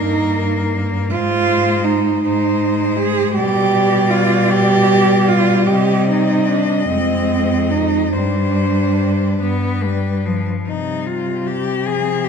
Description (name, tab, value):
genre	classical, lyrical piece for cello ensemble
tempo	47-54 BPM (dotted quarters)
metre	6/8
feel	rubato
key	C minor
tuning	A4 = 439 Hz
part	rich cello	melody	0.0-12.3 s	Eb4 to Eb5	-23 LUFS	left 7 dB	none
part	rich cello	second line	0.0-12.3 s	F3 to Ab4	-18 LUFS	right 5 dB	none
part	clear cello	accompaniment	0.0-12.3 s	F3 to C4	-20 LUFS	left 3 dB	none
part	clear cello	bass	0.0-12.3 s	F2 to C3	-21 LUFS	equal	none
room	wet recital hall reverb, RT60 1.6 s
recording	dark, warm production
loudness	-14 LUFS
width	side -6 dB against mid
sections	0.0-10.7 A section; 10.7-12.3 B section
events	none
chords	0.0 Eb; 1.1 Ab; 3.4 G/B; 5.7 Cm; 6.9 Fm; 8.1 Gsus4; 9.4 G; 10.7 C5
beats	| 1.11 2.23 | 3.36 4.51 | 5.67 6.89 | 8.14 9.42 | 10.68 11.87